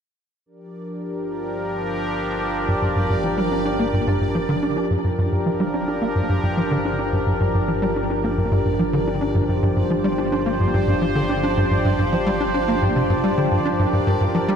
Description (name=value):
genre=ambient, sequencer-driven space music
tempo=108 BPM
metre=4/4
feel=straight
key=G minor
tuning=A4 = 440 Hz
part: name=sweeping resonant pad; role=sustained chords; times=0.5-14.6 s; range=F3 to C5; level=-22 LUFS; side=equal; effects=chorus
part: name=analog drone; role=bass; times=1.3-14.6 s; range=G1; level=-32 LUFS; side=equal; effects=chorus
part: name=bubbling stepped-filter texture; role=texture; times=0.5-14.6 s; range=D5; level=-38 LUFS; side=right 2 dB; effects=chorus, built-in reverb
part: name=tight sequencer bass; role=riff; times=2.7-14.5 s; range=G2 to D4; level=-21 LUFS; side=equal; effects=ensemble chorus, cassette tape, tape echo
room=wet huge ambient reverb, RT60 7.8 s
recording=none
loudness=-18 LUFS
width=side -7 dB against mid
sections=0.5-4.9 A section; 4.9-14.6 B section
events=fade-in on synth drone 0.5-4.9; fade-in on synth texture 0.5-4.9, 4.9-14.6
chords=0.5 Gm7